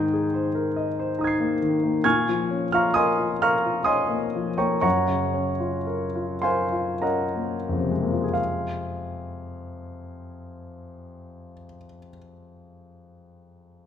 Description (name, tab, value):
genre	classical, impressionist solo piano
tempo	43-71 BPM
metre	3/4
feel	rubato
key	F minor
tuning	A4 = 439 Hz
part	clear grand piano	solo	0.0-13.9 s	F2 to C7	-23 LUFS	left 1 dB	none
room	wet recital hall reverb, RT60 1.6 s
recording	minimal, uncompressed stereo recording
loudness	-22 LUFS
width	side -9 dB against mid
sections	0.0-8.4 A section; 8.4-12.1 B section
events	slowing down 0.7-8.4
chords	0.0 Abmaj9; 2.0 Bbm7; 4.8 Gbmaj7; 8.4 Fm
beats	0.32 1.18 | 2.04 2.94 3.87 | 4.84 5.89 7.06 | 8.37 9.60 10.84